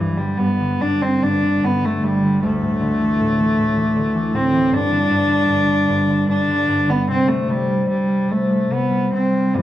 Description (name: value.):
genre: celtic folk, Celtic slow air.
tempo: 70-79 BPM.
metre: 3/4.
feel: rubato.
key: unclear.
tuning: A4 = 440 Hz.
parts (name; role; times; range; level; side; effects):
warm cello; melody; 0.0-9.6 s; E3 to D4; -18 LUFS; equal; none.
concert harp; accompaniment; 0.0-9.6 s; D2 to G3; -20 LUFS; equal; none.
room: wet recital hall reverb, RT60 1.4 s.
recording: dark, warm production.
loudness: -16 LUFS.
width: side -13 dB against mid.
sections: 0.0-9.6 A section.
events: none.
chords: 0.0 G5; 2.4 Dsus2; 4.7 G5; 7.1 C5.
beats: 0.81 1.64 | 2.42 3.19 3.96 | 4.72 5.50 6.30 | 7.09 7.88 8.70 | 9.55.